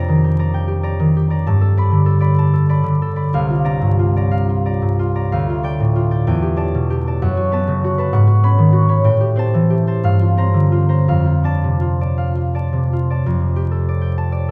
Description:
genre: classical, solo harp piece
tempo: 53-68 BPM (dotted quarters)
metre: 6/8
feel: rubato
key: F lydian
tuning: A4 = 441 Hz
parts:
  - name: concert harp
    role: solo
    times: 0.0-14.5 s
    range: C2 to B5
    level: -16 LUFS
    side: equal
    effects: none
room: wet recital hall reverb, RT60 1.8 s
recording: vinyl crackle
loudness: -17 LUFS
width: mono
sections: 0.0-13.3 A section; 13.3-14.5 B section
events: none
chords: 0.0 Ebmaj7/F; 1.5 Gadd9; 3.3 C9sus4; 5.3 Dmadd11; 6.3 Em7; 7.2 Gbmadd11; 8.1 Abm7; 9.0 Am7; 10.0 Gm11; 11.1 F6; 13.3 F69

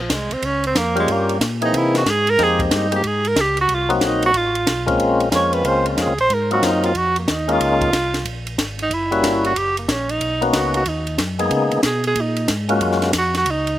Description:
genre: soul jazz organ trio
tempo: 184 BPM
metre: 4/4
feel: swing 64% on 8ths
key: F minor, Bb minor from 5.0 s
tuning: A4 = 440 Hz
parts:
  - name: warm tenor saxophone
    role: melody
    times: 0.0-13.8 s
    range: F3 to Db5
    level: -19 LUFS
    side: right 2 dB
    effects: slapback echo
  - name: mellow tonewheel organ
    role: bass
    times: 0.0-13.8 s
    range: Gb1 to Db3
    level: -25 LUFS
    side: equal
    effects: overdrive, chorus vibrato, slow rotary speaker
  - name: compact cocktail drum kit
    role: drums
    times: 0.1-13.7 s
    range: hi-hat, kick drum, ride cymbal, snare drum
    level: -24 LUFS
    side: equal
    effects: none
  - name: percussive tonewheel organ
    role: melody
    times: 1.0-13.1 s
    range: E3 to Ab4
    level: -19 LUFS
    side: left 2 dB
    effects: slow rotary speaker, slapback echo
room: little or no reverb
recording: recorded outdoors, with no room sound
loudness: -16 LUFS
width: side -13 dB against mid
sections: 0.0-5.0 A section; 5.0-13.8 A section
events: tenor saxophone solo 0.0-13.8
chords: 0.0 Bbmadd9; 1.1 Gm7b5; 1.7 C7alt; 2.4 Fm11; 3.7 Cm7b5; 4.3 F; 5.0 Bbm9; 6.3 Ab13; 7.6 Db69; 8.9 Gb7b9; 10.2 Bmaj9; 11.5 Db7sus2; 12.8 Gbmaj9

